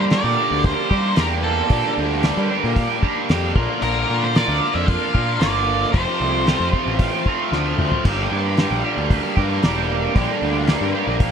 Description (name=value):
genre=psychedelic rock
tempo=113 BPM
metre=4/4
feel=straight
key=G minor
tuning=A4 = 440 Hz
part: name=octave-fuzz lead guitar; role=melody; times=0.0-6.7 s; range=A4 to F5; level=-23 LUFS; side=right 1 dB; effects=distortion, digital delay
part: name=overdriven electric guitar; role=riff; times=0.0-11.3 s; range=F2 to G4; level=-21 LUFS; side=right 1 dB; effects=flanger
part: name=fuzz picked electric bass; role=bass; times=0.0-11.3 s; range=E1 to G3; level=-23 LUFS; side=equal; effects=overdrive
part: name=cloth-damped thuddy drum kit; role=drums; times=0.1-11.3 s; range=crash cymbal, hi-hat, kick drum, snare drum, toms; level=-19 LUFS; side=equal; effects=none
room=little or no reverb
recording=none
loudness=-17 LUFS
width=side -7 dB against mid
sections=0.0-11.3 A section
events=drum fill 7.5-8.1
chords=0.0 Gm; 3.6 Bb; 5.9 F; 8.1 Gm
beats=0.11 0.64 1.17 | 1.70 2.23 2.77 3.29 | 3.83 4.35 4.88 5.41 | 5.94 6.47 7.00 7.53 | 8.05 8.58 9.11 9.63 | 10.16 10.69 11.21